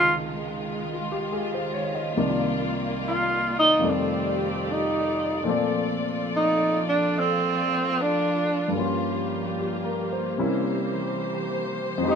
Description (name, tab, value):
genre	jazz ballad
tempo	73 BPM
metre	4/4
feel	swing 66% on 8ths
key	unclear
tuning	A4 = 441 Hz
part	warm tenor saxophone	melody	0.0-12.2 s	C4 to F4	-22 LUFS	right 1 dB	none
part	warm grand piano	accompaniment	0.0-12.2 s	C2 to Eb5	-28 LUFS	left 2 dB	none
part	warm studio string section	sustained chords	0.0-12.2 s	Eb3 to D5	-29 LUFS	right 1 dB	none
room	moderate large studio reverb, RT60 0.9 s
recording	minimal, uncompressed stereo recording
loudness	-23 LUFS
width	side -6 dB against mid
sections	0.0-12.2 A section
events	tenor saxophone solo 0.0-12.2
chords	0.0 Dbmaj9; 2.2 Cm11; 3.8 F13; 5.5 Bbmaj7; 8.8 Gm7b5; 10.4 C7b9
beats	0.52 1.34 | 2.16 2.99 3.81 4.64 | 5.46 6.29 7.11 7.93 | 8.76 9.58 10.40 11.21 | 12.03